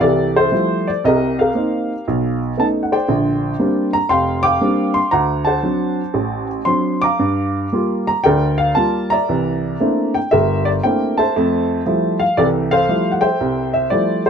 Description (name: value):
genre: solo jazz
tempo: 117 BPM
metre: 4/4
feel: swing 67% on 8ths, rubato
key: F major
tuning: A4 = 439 Hz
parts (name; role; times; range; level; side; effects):
- warm upright piano; solo; 0.0-14.3 s; F1 to D6; -15 LUFS; equal; none
room: light reverb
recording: close, detailed microphones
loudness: -15 LUFS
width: side -7 dB against mid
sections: 0.0-14.3 A section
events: none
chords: 0.0 Fmaj9; 1.0 Cm7; 2.1 B9; 3.1 Bb69; 5.1 D7; 7.2 Gm7; 9.3 C13; 11.4 Fmaj9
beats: 0.01 0.53 | 1.05 1.56 2.07 2.58 | 3.09 3.60 4.11 4.61 | 5.13 5.64 6.16 6.68 | 7.21 7.73 8.26 8.78 | 9.30 9.81 10.33 10.85 | 11.36 11.87 12.38 12.89 | 13.40 13.92